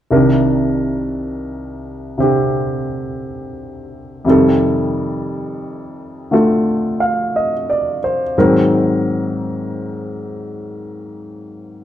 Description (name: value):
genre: jazz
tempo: 58 BPM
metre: 4/4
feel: swing 66% on 8ths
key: C dorian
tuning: A4 = 444 Hz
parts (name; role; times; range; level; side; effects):
- clear baby grand piano; accompaniment; 0.1-11.8 s; C2 to F5; -16 LUFS; equal; none
room: moderate large studio reverb, RT60 0.9 s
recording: none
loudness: -14 LUFS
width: side -11 dB against mid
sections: 0.1-11.8 A section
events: none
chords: 0.1 Cm9; 4.2 F9; 8.4 Ab7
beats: | 0.09 1.13 2.17 3.21 | 4.25 5.28 6.31 7.33 | 8.36 9.38 10.40 11.43